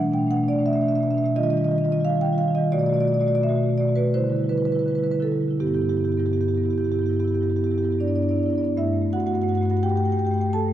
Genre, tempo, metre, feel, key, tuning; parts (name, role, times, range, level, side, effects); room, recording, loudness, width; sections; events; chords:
classical, contemporary piece for solo marimba; 71-89 BPM; 4/4; rubato; G major; A4 = 436 Hz
marimba with soft mallets; solo; 0.0-10.7 s; G2 to A5; -20 LUFS; equal
wet concert hall reverb, RT60 2.2 s; dark, warm production; -20 LUFS; side -11 dB against mid
0.0-8.8 A section; 8.8-10.7 B section
0.0 Bm7; 1.4 Ebadd9; 2.7 Bm7; 4.1 Dsus24; 5.6 G6; 8.8 Gsus2